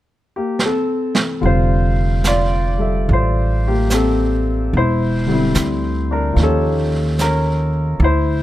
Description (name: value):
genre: jazz ballad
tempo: 73 BPM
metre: 4/4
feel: swing 66% on 8ths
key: F major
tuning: A4 = 435 Hz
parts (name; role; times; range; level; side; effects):
- warm grand piano; accompaniment; 0.4-8.4 s; D3 to E5; -18 LUFS; left 1 dB; none
- jazz brush drum kit; drums; 0.6-8.4 s; brushed snare drum, hi-hat, snare drum; -23 LUFS; right 3 dB; none
- upright bass; bass; 1.4-8.4 s; E1 to Eb2; -17 LUFS; right 1 dB; none
room: little or no reverb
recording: close, detailed microphones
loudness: -15 LUFS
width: side -14 dB against mid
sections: 0.0-1.4 A section; 1.4-8.4 B section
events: drum fill 0.6-1.4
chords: 0.0 Am7; 1.4 F69; 4.7 C9/E; 6.4 Eb7#11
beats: 0.59 | 1.41 2.24 3.07 3.90 | 4.73 5.55 6.38 7.20 | 8.02